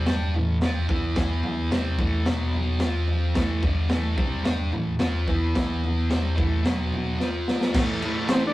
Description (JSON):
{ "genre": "garage rock duo or trio", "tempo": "109 BPM", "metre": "4/4", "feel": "straight", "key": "A minor", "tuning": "A4 = 440 Hz", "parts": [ { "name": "thick fuzz guitar", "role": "riff", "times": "0.0-8.5 s", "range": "G2 to G4", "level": "-27 LUFS", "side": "equal", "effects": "distortion" }, { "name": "raw garage drum kit", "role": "drums", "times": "0.1-8.4 s", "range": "crash cymbal, kick drum, ride cymbal, snare drum, toms", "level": "-23 LUFS", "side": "equal", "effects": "none" }, { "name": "combo organ", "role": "melody", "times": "8.3-8.5 s", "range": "C4 to D4", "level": "-23 LUFS", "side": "right 1 dB", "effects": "none" } ], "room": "light reverb", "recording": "rough rehearsal-room recording", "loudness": "-22 LUFS", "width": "side -17 dB against mid", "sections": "0.0-7.8 A section", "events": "drum fill 7.2-7.8", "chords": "0.0 Am; 1.2 E5; 1.7 Am; 2.3 B5; 2.8 F5; 3.4 Am; 5.6 E5; 6.1 Am; 6.7 B5; 7.2 F5; 7.8 A5", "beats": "0.07 0.62 | 1.17 1.72 2.27 2.81 | 3.36 3.91 4.46 5.01 | 5.56 6.11 6.66 7.20 | 7.75 8.30" }